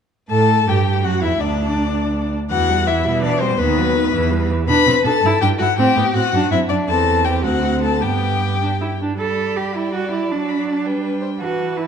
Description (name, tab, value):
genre	quick classical-period movement for string quartet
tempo	109 BPM (dotted quarters)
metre	6/8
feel	rubato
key	G major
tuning	A4 = 439 Hz
part	rich violin	melody	0.3-11.9 s	B4 to B5	-21 LUFS	left 8 dB	none
part	rich violin	second line	0.3-11.9 s	B3 to D5	-23 LUFS	left 3 dB	none
part	rich viola	accompaniment	0.3-11.9 s	D#3 to A4	-23 LUFS	right 2 dB	none
part	rich cello	bass	0.3-11.9 s	D2 to A4	-20 LUFS	right 4 dB	none
room	wet recital hall reverb, RT60 1.5 s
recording	dark, warm production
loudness	-16 LUFS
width	side -7 dB against mid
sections	0.3-9.2 A section; 9.2-11.9 A section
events	none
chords	0.3 Emadd11; 1.4 N.C.; 2.5 Em; 3.6 B/D#; 4.1 Em; 4.7 Bm; 5.2 Em; 5.8 Am; 6.3 D; 6.9 C/E; 7.4 D7; 8.0 G; 10.3 D/F#; 10.9 G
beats	| 0.30 0.86 | 1.41 1.96 | 2.51 3.05 | 3.59 4.13 | 4.68 5.23 | 5.78 6.33 | 6.88 7.44 | 8.03 8.61 | 9.20 9.75 | 10.31 10.86 | 11.41